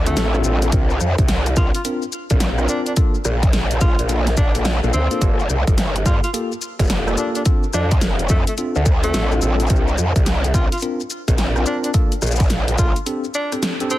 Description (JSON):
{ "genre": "glitch hop", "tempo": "107 BPM", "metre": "4/4", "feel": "swing 64% on 16ths", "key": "unclear", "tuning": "A4 = 438 Hz", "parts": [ { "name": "growl bass", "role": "bass", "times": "0.0-12.9 s", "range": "F1 to G2", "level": "-19 LUFS", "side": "equal", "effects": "chorus, overdrive" }, { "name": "breathy tenor saxophone", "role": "melody", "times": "0.1-14.0 s", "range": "A3 to F4", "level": "-27 LUFS", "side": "equal", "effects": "digital delay" }, { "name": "tine electric piano", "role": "stabs", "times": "0.1-14.0 s", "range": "Bb3 to Bb4", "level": "-25 LUFS", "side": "left 1 dB", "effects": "medium stereo tremolo, sidechain pumping, digital delay" }, { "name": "dubstep drum kit", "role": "drums", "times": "0.1-14.0 s", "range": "hi-hat, rim click, shaker, snare drum", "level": "-25 LUFS", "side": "left 1 dB", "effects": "none" }, { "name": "electronic kick drum", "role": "drums", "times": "0.7-12.9 s", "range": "none", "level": "-17 LUFS", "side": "equal", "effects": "none" } ], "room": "little or no reverb", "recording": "dense, heavily limited modern master, vinyl crackle", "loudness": "-16 LUFS", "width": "side -15 dB against mid", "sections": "0.0-14.0 A section", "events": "break 13.1-14.0", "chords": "0.0 F6; 0.7 C9sus4; 3.0 Bbmaj7; 5.2 Gm9; 7.5 F6; 9.7 C9sus4; 11.9 Bbmaj7; 13.1 D7sus4", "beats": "0.17 | 0.73 1.29 1.85 2.41 | 2.97 3.53 4.09 4.65 | 5.21 5.77 6.33 6.90 | 7.46 8.02 8.58 9.14 | 9.70 10.26 10.82 11.38 | 11.94 12.50 13.06 13.62" }